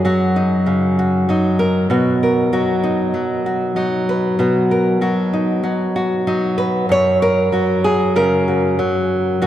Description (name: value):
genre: folk, solo fingerstyle acoustic guitar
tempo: 96 BPM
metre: 4/4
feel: straight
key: F# major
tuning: A4 = 443 Hz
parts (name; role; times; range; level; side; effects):
- nylon-string guitar; solo; 0.0-9.5 s; F#2 to C#5; -15 LUFS; equal; none
room: wet cathedral reverb, RT60 4.9 s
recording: recorded in a church or concert hall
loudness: -15 LUFS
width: side -12 dB against mid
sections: 0.0-6.9 A section; 6.9-9.5 B section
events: none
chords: 0.0 F#6; 1.9 B; 6.9 F#